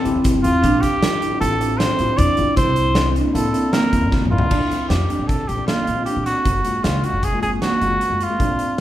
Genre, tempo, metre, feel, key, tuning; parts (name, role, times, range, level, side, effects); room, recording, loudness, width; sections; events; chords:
progressive instrumental, band music in an uneven meter; 155 BPM; 5/4; straight; Bb lydian; A4 = 440 Hz
warm trumpet; melody; 0.0-8.8 s; F4 to D5; -21 LUFS; equal
vibraphone with medium hard mallets; second line; 0.0-4.5 s; Bb3 to E4; -23 LUFS; left 3 dB
tine electric piano; accompaniment; 0.0-8.8 s; Ab3 to G4; -27 LUFS; equal; fast stereo tremolo
marimba with medium mallets; arpeggios; 0.0-8.7 s; Bb3 to F4; -25 LUFS; right 4 dB
upright bass; bass; 0.1-8.6 s; Gb1 to Bb2; -23 LUFS; equal
big rock drum kit; drums; 0.1-8.8 s; crash cymbal, hi-hat, kick drum, snare drum, toms; -22 LUFS; equal
moderate recital hall reverb, RT60 1.4 s; recorded in a church or concert hall; -16 LUFS; side -12 dB against mid
0.0-4.5 A section; 4.5-8.8 B section
drum fill 4.1-4.5
0.0 Am7; 0.6 Dm11; 2.6 C7; 4.5 Bbmaj9; 6.5 Gbmaj7